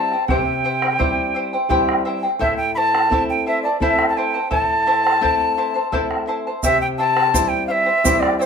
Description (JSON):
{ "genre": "andean folk, Andean ensemble", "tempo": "85 BPM", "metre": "3/4", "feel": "straight", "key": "unclear", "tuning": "A4 = 441 Hz", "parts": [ { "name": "reedy quena", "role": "melody", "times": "0.0-8.5 s", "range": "C5 to B5", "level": "-18 LUFS", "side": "equal", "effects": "none" }, { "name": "charango", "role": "accompaniment", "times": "0.0-8.5 s", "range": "E4 to A5", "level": "-23 LUFS", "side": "left 1 dB", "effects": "none" }, { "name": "nylon-string guitar", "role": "accompaniment", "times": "0.0-8.5 s", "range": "A2 to E4", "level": "-25 LUFS", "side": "left 2 dB", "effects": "none" }, { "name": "bombo", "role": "percussion", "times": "0.1-8.4 s", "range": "none", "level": "-24 LUFS", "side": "right 2 dB", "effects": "none" }, { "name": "tube shaker", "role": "percussion", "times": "6.6-8.5 s", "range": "none", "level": "-25 LUFS", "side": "right 7 dB", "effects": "none" } ], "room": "moderate studio reverb, RT60 0.7 s", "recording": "minimal, uncompressed stereo recording", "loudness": "-16 LUFS", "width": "side -6 dB against mid", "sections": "0.0-6.6 A section; 6.6-8.5 A section", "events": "none", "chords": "0.0 C; 2.4 Am; 6.6 C" }